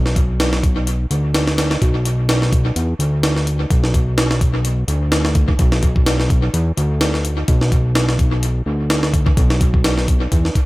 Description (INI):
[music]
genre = breakbeat, breaks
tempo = 127 BPM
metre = 4/4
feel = swing 55% on 16ths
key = B minor pentatonic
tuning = A4 = 440 Hz
[part]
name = fat analog bass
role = bass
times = 0.0-10.5 s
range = B1 to E2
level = -18 LUFS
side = equal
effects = none
[part]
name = breakbeat sampler-style drum kit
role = drums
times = 0.1-10.7 s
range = hi-hat, kick drum, snare drum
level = -17 LUFS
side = equal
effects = studio reverb, dub echo
[sound]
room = light reverb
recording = echo-heavy mix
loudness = -14 LUFS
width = side -20 dB against mid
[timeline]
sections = 0.0-10.7 A section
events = none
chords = none